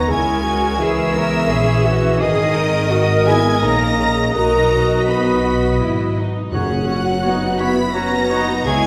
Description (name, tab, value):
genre	cinematic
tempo	84 BPM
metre	3/4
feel	rubato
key	unclear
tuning	A4 = 440 Hz
part	rich symphonic violin section	melody	0.0-8.9 s	D#6 to B6	-29 LUFS	equal	none
part	mellow clarinet	second line	0.0-8.8 s	F#4 to A#4	-29 LUFS	equal	none
part	mellow hollow concert flute	second line	0.0-8.9 s	D#5 to B5	-27 LUFS	equal	none
part	rich symphonic violin section	second line	0.0-8.9 s	D#5 to B5	-30 LUFS	equal	none
part	warm oboe	second line	0.0-8.8 s	C#5 to D#5	-29 LUFS	equal	none
part	rich symphonic viola section	accompaniment	0.0-8.9 s	B3 to D#5	-26 LUFS	equal	none
part	warm French horn section	sustained chords	0.0-8.9 s	D#3 to A#4	-23 LUFS	equal	none
part	concert harp	arpeggios	0.0-8.9 s	F#2 to D#6	-30 LUFS	equal	none
part	clear studio double bass section	bass	0.0-8.9 s	F#1 to C#2	-25 LUFS	equal	none
part	rich symphonic cello section	bass	0.0-8.9 s	C#4 to A#4	-27 LUFS	equal	none
part	timpani	percussion	6.5-7.5 s	F#2	-28 LUFS	equal	none
room	wet recital hall reverb, RT60 1.5 s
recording	recorded in a church or concert hall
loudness	-17 LUFS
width	mono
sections	0.0-8.9 A section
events	none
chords	0.1 C#m; 2.2 G#sus2; 4.4 B; 6.5 F#sus4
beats	| 0.10 0.80 1.50 | 2.21 2.91 3.63 | 4.36 5.08 5.81 | 6.53 7.24 7.95 | 8.66